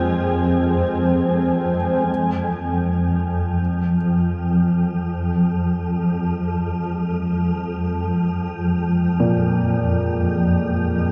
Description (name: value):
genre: dark ambient drone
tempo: free time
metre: none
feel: none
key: unclear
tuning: A4 = 439 Hz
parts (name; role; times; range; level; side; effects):
- sweeping resonant pad; sustained chords; 0.0-11.1 s; F3 to Ab4; -27 LUFS; equal; chorus
- dark baby grand piano; arpeggios; 0.0-11.1 s; Bb2 to F4; -27 LUFS; equal; delay
- swarming drone; drone; 0.0-11.1 s; F2 to F3; -22 LUFS; equal; built-in reverb
- wind-like tuned noise texture; texture; 0.0-2.1 s; Ab5; -33 LUFS; equal; built-in reverb
room: wet cathedral reverb, RT60 5.5 s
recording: none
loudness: -20 LUFS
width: mono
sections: 0.0-2.1 A section; 2.1-11.1 B section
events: fade-in on analog synth pad 2.1-11.1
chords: 0.0 Fm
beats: free time